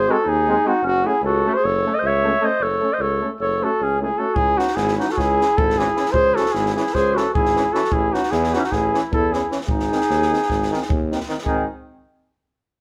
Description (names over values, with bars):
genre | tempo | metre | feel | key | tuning
balkan folk, Balkan brass band | 304 BPM (eighths) | 9/8 | straight | G# phrygian dominant | A4 = 439 Hz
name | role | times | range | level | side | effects
mellow flugelhorn | melody | 0.0-11.7 s | E4 to E5 | -22 LUFS | equal | none
mellow clarinet | second line | 0.0-11.7 s | C#4 to C#5 | -26 LUFS | equal | none
warm tuba | bass | 0.0-11.7 s | F#1 to E2 | -28 LUFS | equal | none
brilliant trombone | accompaniment | 0.1-11.7 s | D#3 to A3 | -31 LUFS | equal | none
clear euphonium | accompaniment | 0.1-11.7 s | B#3 to C#4 | -33 LUFS | equal | none
compact cocktail drum kit | percussion | 4.4-11.7 s | kick drum, snare drum | -29 LUFS | equal | none
room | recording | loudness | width
moderate studio reverb, RT60 0.9 s | band playing live in one room | -20 LUFS | mono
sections
0.0-11.5 A section; 11.5-12.8 B section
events
none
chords
0.0 G#; 0.8 F#m; 4.4 C#m; 7.9 A; 9.7 G#